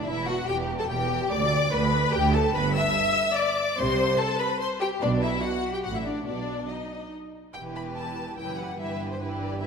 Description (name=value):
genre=quick classical-period movement for string orchestra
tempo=145 BPM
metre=3/4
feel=straight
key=E minor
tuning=A4 = 440 Hz
part: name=rich studio violin section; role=melody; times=0.0-9.7 s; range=B4 to E6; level=-31 LUFS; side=left 5 dB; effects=none
part: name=rich chamber violin section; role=second line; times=0.0-9.7 s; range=D4 to E5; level=-30 LUFS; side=left 3 dB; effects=none
part: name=rich studio viola section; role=accompaniment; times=0.0-9.7 s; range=E3 to E5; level=-31 LUFS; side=equal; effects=none
part: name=rich symphonic double bass section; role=bass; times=0.0-9.7 s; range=E1 to D2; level=-31 LUFS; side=right 3 dB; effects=none
part: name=warm chamber cello section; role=bass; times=0.0-9.7 s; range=D2 to C3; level=-32 LUFS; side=right 4 dB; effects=none
room=wet concert hall reverb, RT60 2.2 s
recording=none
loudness=-23 LUFS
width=side -6 dB against mid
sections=0.0-7.5 A section; 7.5-9.7 B section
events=none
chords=0.1 Em; 1.3 Bm/D; 2.5 G5; 3.8 Am9/C; 5.0 Bmadd11; 5.8 Dadd9/A; 6.3 B; 7.5 Em; 8.8 Em/G